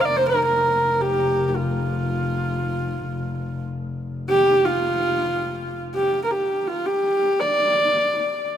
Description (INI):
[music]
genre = mongolian traditional, Mongolian folk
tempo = 82 BPM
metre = 4/4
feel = straight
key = unclear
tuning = A4 = 440 Hz
[part]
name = dark horsehead fiddle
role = melody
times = 0.0-8.5 s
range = F4 to F5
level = -20 LUFS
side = right 1 dB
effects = none
[part]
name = dark double bass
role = drone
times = 0.0-6.0 s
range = F1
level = -28 LUFS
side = left 3 dB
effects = none
[sound]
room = moderate huge ambient reverb, RT60 4.4 s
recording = none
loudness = -19 LUFS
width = side -9 dB against mid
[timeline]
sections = 0.0-5.9 A section; 5.9-8.6 B section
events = none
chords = none